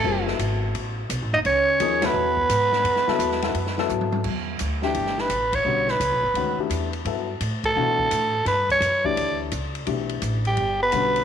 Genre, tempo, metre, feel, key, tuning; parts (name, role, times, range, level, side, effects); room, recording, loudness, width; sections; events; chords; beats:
modal jazz; 171 BPM; 4/4; swing 66% on 8ths; F# dorian, E dorian from 4.2 s; A4 = 440 Hz
growling soprano saxophone; melody; 0.0-11.2 s; G4 to D#5; -22 LUFS; right 1 dB
breathy trombone; second line; 0.0-3.9, 10.5-11.2 s; G3 to D#4; -30 LUFS; right 10 dB
dark baby grand piano; accompaniment; 0.0-11.2 s; D3 to A#4; -28 LUFS; left 11 dB
upright bass; bass; 0.0-11.2 s; F#1 to B2; -28 LUFS; equal
open jazz drum kit; drums; 0.3-11.2 s; crash cymbal, hi-hat, kick drum, ride cymbal, snare drum, toms; -31 LUFS; equal
moderate plate reverb, RT60 2.0 s; 1960s-style stereo with parts hard left and right; -20 LUFS; side -8 dB against mid
0.0-4.2 A section; 4.2-11.2 B section
band accent 2.0, 5.5, 7.6; drum fill 3.9-4.2
0.0 F#m11; 4.2 Em9
| 0.04 0.39 0.74 1.09 | 1.44 1.79 2.14 2.49 | 2.84 3.19 3.54 3.89 | 4.24 4.59 4.95 5.30 | 5.65 6.00 6.35 6.70 | 7.05 7.41 7.76 8.11 | 8.46 8.81 9.16 9.52 | 9.87 10.22 10.57 10.92